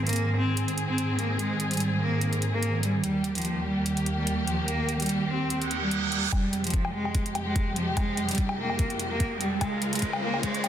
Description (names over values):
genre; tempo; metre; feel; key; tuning
heavy wobble dubstep; 146 BPM; 4/4; swing 54% on 16ths, half-time; F minor; A4 = 440 Hz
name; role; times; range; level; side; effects
dark symphonic string section; sustained chords; 0.0-10.7 s; Db2 to Ab4; -29 LUFS; equal; sidechain pumping, low-pass filter
rich cello; melody; 0.1-10.7 s; F3 to C4; -29 LUFS; equal; tape echo
electronic hi-hat and woodblock; drums; 0.1-10.7 s; none; -33 LUFS; left 1 dB; high-pass filter on hats, high-pass filter on cymbals, high-pass filter on perc, high-pass filter on room
reverse cymbal and riser; sound effects; 5.6-10.7 s; none; -34 LUFS; right 3 dB; none
electronic kick drum; drums; 6.3-10.5 s; none; -27 LUFS; equal; none
room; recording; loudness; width
moderate digital room reverb, RT60 1.1 s; dense, heavily limited modern master, high-pass filter; -25 LUFS; side -10 dB against mid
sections
0.0-6.3 A section; 6.3-10.7 B section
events
reverse cymbal 5.6-6.3; build-up 6.3-10.7; riser 6.3-10.7; filter sweep 6.3-10.7; drum fill 9.6-10.7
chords
0.0 Ab; 3.0 Eb; 6.3 Fmadd9; 9.6 Db